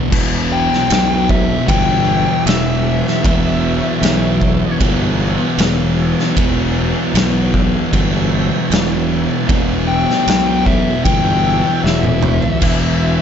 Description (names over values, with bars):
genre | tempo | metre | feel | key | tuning
stoner and doom metal | 77 BPM | 4/4 | straight | E minor | A4 = 440 Hz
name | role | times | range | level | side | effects
tonewheel organ | sustained chords | 0.0-13.2 s | E3 to B3 | -29 LUFS | equal | none
thick fuzz guitar | riff | 0.0-13.2 s | E2 to E3 | -20 LUFS | left 10 dB | distortion
thick fuzz guitar | riff | 0.0-13.2 s | E2 to E3 | -21 LUFS | right 14 dB | distortion
fuzz fingered electric bass | bass | 0.1-13.2 s | E1 to B1 | -19 LUFS | equal | overdrive
oversized low-tuned drum kit | drums | 0.1-12.8 s | crash cymbal, kick drum, ride cymbal, snare drum, toms | -18 LUFS | equal | none
fuzz lead guitar | melody | 0.5-4.8, 9.9-13.2 s | E5 to G5 | -20 LUFS | left 4 dB | wah, distortion
room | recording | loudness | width
little or no reverb | nothing above 7.8 kHz | -13 LUFS | side -8 dB against mid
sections
0.1-13.2 A section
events
lead electric guitar solo 0.1-13.2; drum fill 11.8-12.6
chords
0.1 Em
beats
| 0.12 0.90 1.68 2.46 | 3.24 4.02 4.80 5.58 | 6.37 7.15 7.93 8.71 | 9.49 10.27 11.05 11.83 | 12.61